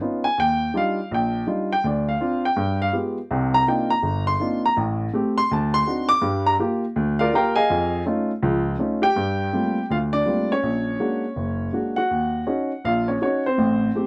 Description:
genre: solo jazz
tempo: 164 BPM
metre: 4/4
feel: swing 63% on 8ths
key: unclear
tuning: A4 = 439 Hz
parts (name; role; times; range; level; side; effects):
- dark upright piano; solo; 0.0-14.1 s; F#1 to D6; -22 LUFS; equal; none
room: light reverb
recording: none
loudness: -22 LUFS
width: mono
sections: 0.0-9.2 A section; 9.2-14.1 B section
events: upright piano solo 0.0-9.2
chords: 0.4 Ebmaj9; 1.8 Dm7; 2.6 G7b9; 3.3 Cm11; 4.8 Am7; 5.5 D7b9; 6.2 Gm7; 7.7 F7alt; 9.2 Gm11; 10.6 Bb7alt; 12.1 Ebm7; 13.6 Am7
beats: | 0.36 0.73 1.09 1.46 | 1.83 2.19 2.56 2.92 | 3.29 3.66 4.02 4.39 | 4.76 5.12 5.49 5.86 | 6.22 6.59 6.96 7.32 | 7.69 8.05 8.42 8.79 | 9.15 9.52 9.89 10.26 | 10.62 10.99 11.36 11.73 | 12.09 12.46 12.83 13.20 | 13.56 13.93

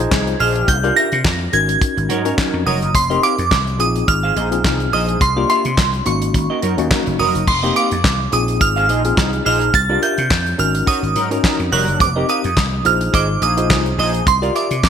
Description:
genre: early-eighties boogie funk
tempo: 106 BPM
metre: 4/4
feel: swing 56% on 16ths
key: unclear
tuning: A4 = 440 Hz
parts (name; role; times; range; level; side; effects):
- glassy synth bell; melody; 0.0-14.9 s; C6 to Bb6; -18 LUFS; right 3 dB; chorus, phaser
- tine electric piano; accompaniment; 0.0-14.7 s; Bb3 to D5; -23 LUFS; left 3 dB; overdrive, fast stereo tremolo
- semi-hollow electric guitar; riff; 0.0-14.9 s; F4 to F5; -27 LUFS; right 6 dB; lush chorus
- vintage slap bass; bass; 0.0-14.9 s; F1 to C3; -21 LUFS; equal; none
- analog synth brass; second line; 0.1-14.2 s; F3 to Bb4; -26 LUFS; left 1 dB; chorus
- damped 70s drum kit; drums; 0.1-14.9 s; crash cymbal, handclaps, hi-hat, kick drum, snare drum; -19 LUFS; equal; gated reverb
room: moderate plate reverb, RT60 1.9 s, studio ambience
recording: bright 1980s-style digital production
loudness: -14 LUFS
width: side -8 dB against mid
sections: 0.0-7.5 A section; 7.5-14.9 A section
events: none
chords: 0.0 Bb9sus4; 0.7 C9sus4; 1.5 Ab9sus4; 2.9 F9sus4; 3.8 Bb9sus4; 5.2 C9sus4; 6.1 Ab9sus4; 7.5 F9sus4; 8.3 Bb9sus4; 9.7 C9sus4; 10.6 Ab9sus4; 12.0 F9sus4; 12.9 Bb9sus4; 14.3 C9sus4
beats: 0.12 | 0.68 1.25 1.81 2.38 | 2.95 3.51 4.08 4.64 | 5.21 5.78 6.34 6.91 | 7.47 8.04 8.61 9.17 | 9.74 10.30 10.87 11.44 | 12.00 12.57 13.13 13.70 | 14.27 14.83

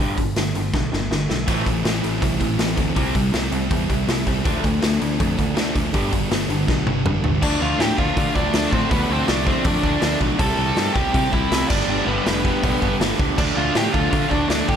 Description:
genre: punk rock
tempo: 161 BPM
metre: 4/4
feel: straight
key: D dorian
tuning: A4 = 441 Hz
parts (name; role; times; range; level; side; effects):
- distorted electric guitar; riff; 0.0-14.8 s; G2 to D4; -24 LUFS; equal; distortion
- modern bright picked electric bass; bass; 0.0-14.8 s; F1 to D3; -26 LUFS; equal; none
- raw garage drum kit; drums; 0.2-14.8 s; crash cymbal, hi-hat, kick drum, snare drum, splash cymbal, toms; -22 LUFS; equal; none
- thick fuzz guitar; riff; 1.5-14.8 s; G2 to E4; -25 LUFS; equal; distortion
- overdriven electric guitar; melody; 7.4-14.8 s; B3 to A5; -24 LUFS; right 1 dB; none
room: little or no reverb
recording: none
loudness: -18 LUFS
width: side -8 dB against mid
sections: 0.0-7.4 A section; 7.4-14.8 B section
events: drum fill 0.7-1.5, 6.7-7.4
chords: 0.0 G; 1.5 Am; 3.0 C; 4.5 Dm; 5.9 G; 7.4 Dm; 10.4 C; 11.7 G; 13.4 Dm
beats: 0.36 0.73 1.10 | 1.48 1.85 2.22 2.59 | 2.96 3.34 3.71 4.08 | 4.45 4.82 5.20 5.57 | 5.94 6.31 6.68 7.05 | 7.42 7.80 8.17 8.54 | 8.91 9.28 9.65 10.02 | 10.39 10.77 11.14 11.51 | 11.88 12.26 12.63 13.00 | 13.37 13.75 14.12 14.49

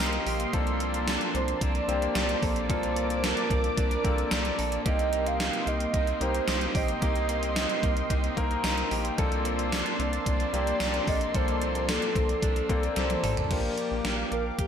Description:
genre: 1980s-style pop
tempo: 111 BPM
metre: 4/4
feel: straight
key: unclear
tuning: A4 = 440 Hz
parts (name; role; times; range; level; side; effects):
- hollow clarinet-like synth lead; melody; 0.0-14.7 s; G4 to F5; -32 LUFS; right 2 dB; chorus, slapback echo
- overdriven electric guitar; accompaniment; 0.0-14.0 s; Bb2 to C4; -39 LUFS; equal; lush chorus
- warm concert grand piano; accompaniment; 0.0-14.7 s; Bb3 to Bb4; -33 LUFS; left 4 dB; slapback echo
- lush unison pad; sustained chords; 0.0-14.7 s; Bb3 to D6; -34 LUFS; equal; chorus
- direct-recorded clean electric guitar; riff; 0.0-14.7 s; F3 to A4; -36 LUFS; right 5 dB; wide subtle chorus, ping-pong delay, slapback echo
- rubbery square bass; bass; 0.0-14.7 s; A1 to C2; -32 LUFS; equal; none
- gated 80s digital drum machine; drums; 0.0-14.7 s; crash cymbal, hi-hat, kick drum, snare drum, tambourine, toms; -30 LUFS; equal; gated reverb, gated reverb snare, overdrive
room: moderate lush hall reverb, RT60 1.6 s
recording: big arena sound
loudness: -25 LUFS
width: side -8 dB against mid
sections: 0.0-13.5 A section; 13.5-14.7 B section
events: drum fill 13.0-13.5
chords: 0.0 Cm7; 0.5 Bbmaj9; 4.9 Cm7; 9.2 Bbmaj9; 13.5 Bb6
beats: | 0.54 1.08 1.62 2.16 | 2.70 3.24 3.78 4.32 | 4.86 5.40 5.94 6.48 | 7.02 7.56 8.10 8.64 | 9.18 9.72 10.27 10.80 | 11.35 11.89 12.43 12.97 | 13.51 14.05 14.59

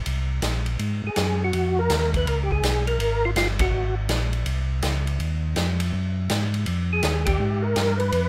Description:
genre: soul jazz organ trio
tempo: 164 BPM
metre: 4/4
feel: swing 66% on 8ths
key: unclear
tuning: A4 = 440 Hz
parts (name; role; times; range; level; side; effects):
- mellow tonewheel organ; bass; 0.0-8.3 s; G1 to Ab2; -26 LUFS; equal; overdrive, chorus vibrato, slow rotary speaker
- swinging big-band drum kit; drums; 0.1-8.2 s; hi-hat, kick drum, ride cymbal, snare drum; -30 LUFS; equal; none
- percussive tonewheel organ; melody; 1.1-4.0, 6.9-8.3 s; F4 to Cb5; -27 LUFS; equal; slow rotary speaker, chorus vibrato, plate reverb
room: little or no reverb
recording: rough home demo mix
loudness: -24 LUFS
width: mono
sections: 0.8-8.3 A section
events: band accent 3.6, 7.2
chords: 0.0 Abadd9 (rootless); 0.8 Absus2; 2.3 Db5; 3.7 Ab13; 6.7 Db13 (rootless)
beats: 0.06 0.43 | 0.80 1.17 1.53 1.90 | 2.27 2.63 3.00 3.37 | 3.73 4.10 4.47 4.83 | 5.20 5.57 5.93 6.30 | 6.66 7.03 7.39 7.76 | 8.13

